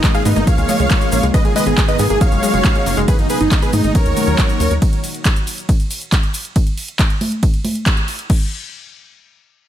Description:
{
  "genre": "uplifting trance",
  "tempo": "138 BPM",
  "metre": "4/4",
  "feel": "straight",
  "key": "G# dorian",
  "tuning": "A4 = 439 Hz",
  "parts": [
    { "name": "dense compressed supersaw", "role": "melody", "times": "0.0-4.7 s", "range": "D#4 to E#5", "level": "-19 LUFS", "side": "equal", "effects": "sidechain pumping, ping-pong delay" },
    { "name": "wide unison pluck", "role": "second line", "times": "0.0-3.0 s", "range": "D#4 to E#5", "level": "-26 LUFS", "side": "right 1 dB", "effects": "wide subtle chorus, sidechain pumping, ping-pong delay" },
    { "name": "lush unison pad", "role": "sustained chords", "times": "0.0-4.8 s", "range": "A#2 to G#4", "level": "-23 LUFS", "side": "equal", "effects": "chorus, sidechain pumping" },
    { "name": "wide unison pluck", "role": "arpeggios", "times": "0.0-3.0 s", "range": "G#2 to B3", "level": "-23 LUFS", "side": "left 3 dB", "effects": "sidechain pumping, ping-pong delay" },
    { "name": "big-room dance drum kit", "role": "drums", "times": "0.0-8.4 s", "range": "congas, crash cymbal, handclaps, hi-hat, ride cymbal", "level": "-22 LUFS", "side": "right 1 dB", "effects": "overdrive" },
    { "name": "electronic kick drum", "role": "drums", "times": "0.0-8.4 s", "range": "none", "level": "-15 LUFS", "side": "equal", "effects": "none" },
    { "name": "cabasa", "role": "percussion", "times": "0.0-6.5 s", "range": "none", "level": "-31 LUFS", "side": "left 3 dB", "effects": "none" },
    { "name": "tight sequencer bass", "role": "bass", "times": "0.3-4.8 s", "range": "F#1 to G#2", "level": "-18 LUFS", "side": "equal", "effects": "sidechain pumping" }
  ],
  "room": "light reverb",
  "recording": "none",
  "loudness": "-13 LUFS",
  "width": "side -11 dB against mid",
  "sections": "0.0-8.3 A section; 8.3-9.7 B section",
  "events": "drop 0.0-8.3; band accent 7.9",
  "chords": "0.5 C#6; 1.3 G#madd9; 2.2 F#6; 3.1 G#madd9; 4.0 D#m; 4.8 N.C.",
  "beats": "0.04 0.47 0.91 | 1.34 1.78 2.21 2.65 | 3.08 3.52 3.95 4.38 | 4.82 5.25 5.69 6.12 | 6.56 6.99 7.43 7.86 | 8.30"
}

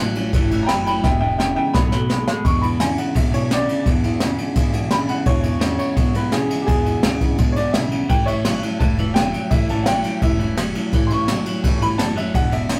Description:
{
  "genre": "rockabilly",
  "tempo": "170 BPM",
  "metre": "4/4",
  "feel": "straight",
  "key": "E mixolydian",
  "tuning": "A4 = 440 Hz",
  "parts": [
    { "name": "picked steel-string acoustic guitar", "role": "accompaniment", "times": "0.0-12.8 s", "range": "E2 to F#4", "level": "-31 LUFS", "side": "equal", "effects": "none" },
    { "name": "clean electric guitar", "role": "riff", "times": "0.0-12.8 s", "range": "E2 to G#3", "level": "-26 LUFS", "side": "equal", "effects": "none" },
    { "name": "upright bass", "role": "bass", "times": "0.0-12.8 s", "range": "E1 to E2", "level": "-31 LUFS", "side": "equal", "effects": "none" },
    { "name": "jazz brush drum kit", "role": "drums", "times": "0.2-12.8 s", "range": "kick drum, ride cymbal, snare drum", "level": "-22 LUFS", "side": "equal", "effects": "none" },
    { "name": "bright upright piano", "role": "melody", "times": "0.6-12.8 s", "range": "G4 to C#6", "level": "-26 LUFS", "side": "equal", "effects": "none" }
  ],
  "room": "light reverb",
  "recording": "rough rehearsal-room recording",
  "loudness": "-19 LUFS",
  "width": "mono",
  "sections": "0.0-2.4 A section; 2.4-12.8 B section",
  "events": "drum fill 1.0-2.4; upright piano solo 2.4-12.8",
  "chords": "0.0 A7; 1.0 E7; 1.7 B7; 2.4 E7; 8.1 A7",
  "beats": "0.33 0.68 | 1.03 1.39 1.74 2.09 | 2.44 2.80 3.15 3.50 | 3.86 4.21 4.56 4.92 | 5.27 5.62 5.98 6.33 | 6.68 7.04 7.39 7.74 | 8.10 8.45 8.80 9.16 | 9.51 9.87 10.22 10.57 | 10.93 11.28 11.63 11.99 | 12.34 12.70"
}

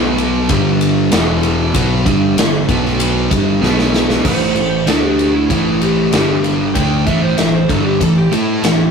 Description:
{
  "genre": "blues rock power trio and southern rock",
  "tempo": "96 BPM",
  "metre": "4/4",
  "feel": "straight",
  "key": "unclear",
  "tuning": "A4 = 440 Hz",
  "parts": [
    { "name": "sludgy distorted guitar", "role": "riff", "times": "0.0-8.9 s", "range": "E2 to A4", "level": "-15 LUFS", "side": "equal", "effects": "overdrive" },
    { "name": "fuzz fingered electric bass", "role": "bass", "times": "0.0-8.9 s", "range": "E1 to A2", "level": "-20 LUFS", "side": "left 1 dB", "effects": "overdrive" },
    { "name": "big rock drum kit", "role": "drums", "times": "0.2-8.8 s", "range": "crash cymbal, kick drum, ride cymbal, snare drum", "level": "-17 LUFS", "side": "equal", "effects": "none" },
    { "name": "overdriven slide guitar", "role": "melody", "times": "4.3-8.9 s", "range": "E4 to G5", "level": "-20 LUFS", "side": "right 2 dB", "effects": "none" }
  ],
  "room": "light reverb",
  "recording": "rough rehearsal-room recording",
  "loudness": "-12 LUFS",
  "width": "side -6 dB against mid",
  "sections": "0.0-4.3 A section; 4.3-8.9 B section",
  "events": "drum fill 3.6-4.3; electric slide guitar solo 4.3-8.9",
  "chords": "0.0 B5; 0.5 G5; 1.1 E5; 1.8 G5; 2.7 B5; 3.3 G5; 3.6 B5; 4.3 A5; 4.9 D5; 5.5 A5; 6.1 G5; 6.8 A5",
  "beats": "0.50 1.12 | 1.75 2.38 3.00 3.63 | 4.25 4.88 5.50 6.13 | 6.75 7.38 8.01 8.63"
}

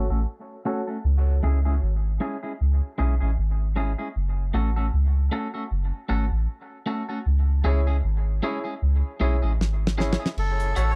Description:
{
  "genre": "dub reggae",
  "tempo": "77 BPM",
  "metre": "4/4",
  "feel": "swing 57% on 16ths",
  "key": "F# minor",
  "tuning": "A4 = 440 Hz",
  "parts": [
    { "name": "clean electric guitar", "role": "accompaniment", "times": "0.0-10.9 s", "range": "G#3 to A4", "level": "-33 LUFS", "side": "equal", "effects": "high-pass filter, low-pass filter, dub echo" },
    { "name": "warm grand piano", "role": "stabs", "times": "0.0-0.8, 7.6-10.9 s", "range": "E4 to C#5", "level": "-36 LUFS", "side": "equal", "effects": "high-pass filter, low-pass filter, dub echo" },
    { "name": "soft dub sub bass", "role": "bass", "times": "0.0-11.0 s", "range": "F#1 to C#2", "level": "-24 LUFS", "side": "equal", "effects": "none" },
    { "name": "damped 70s drum kit", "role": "drums", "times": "9.6-11.0 s", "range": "crash cymbal, hi-hat, snare drum", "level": "-30 LUFS", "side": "equal", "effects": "none" },
    { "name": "melodica", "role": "melody", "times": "10.4-11.0 s", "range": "A4 to C#5", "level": "-31 LUFS", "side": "equal", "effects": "none" },
    { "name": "mellow tonewheel organ", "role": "accompaniment", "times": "10.6-10.8 s", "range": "F#2 to C#4", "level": "-45 LUFS", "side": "equal", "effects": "none" }
  ],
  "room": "little or no reverb",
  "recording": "dry, close 1970s-style studio recording",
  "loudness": "-25 LUFS",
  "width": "mono",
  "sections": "0.0-10.4 A section",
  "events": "filter sweep 0.0-10.4; drum fill 9.6-10.4",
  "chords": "0.0 F#m; 1.0 C#m; 4.1 F#m; 7.3 C#m; 10.4 F#m",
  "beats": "0.26 | 1.04 1.82 2.59 3.37 | 4.15 4.92 5.70 6.48 | 7.26 8.04 8.82 9.59 | 10.37"
}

